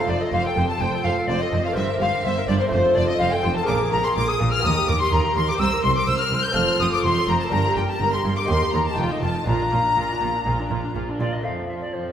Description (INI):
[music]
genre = classical, baroque-style concerto movement with solo episodes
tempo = 124 BPM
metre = 4/4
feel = straight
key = Bb major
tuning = A4 = 440 Hz
[part]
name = mellow alto recorder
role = melody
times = 0.0-12.1 s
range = C5 to G6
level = -25 LUFS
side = left 2 dB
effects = none
[part]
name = rich chamber violin section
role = melody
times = 0.0-12.1 s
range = A4 to G6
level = -29 LUFS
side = left 4 dB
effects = none
[part]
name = lute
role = accompaniment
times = 0.0-12.1 s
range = Eb2 to C5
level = -28 LUFS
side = right 1 dB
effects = none
[part]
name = warm studio viola section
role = accompaniment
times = 0.0-12.1 s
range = F3 to C5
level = -28 LUFS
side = right 2 dB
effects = none
[part]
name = rich chamber violin section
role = second line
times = 0.1-12.1 s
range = C4 to G6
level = -28 LUFS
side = left 3 dB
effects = none
[part]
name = clear studio cello section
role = bass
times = 0.1-12.1 s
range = C2 to Bb2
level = -27 LUFS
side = right 2 dB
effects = none
[part]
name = clear symphonic double bass section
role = bass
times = 0.1-11.3 s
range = F1 to Eb2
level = -27 LUFS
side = right 2 dB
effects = none
[sound]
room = wet scoring stage reverb, RT60 2.1 s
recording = recorded in a church or concert hall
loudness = -19 LUFS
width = side -9 dB against mid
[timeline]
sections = 0.0-11.4 A section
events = none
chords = 0.0 F; 1.8 C5/G; 2.7 F; 3.7 Bb9; 4.6 Eb; 5.6 C5; 6.6 F; 7.5 Gm; 8.5 Eb; 9.0 F7; 9.5 Bb; 11.4 F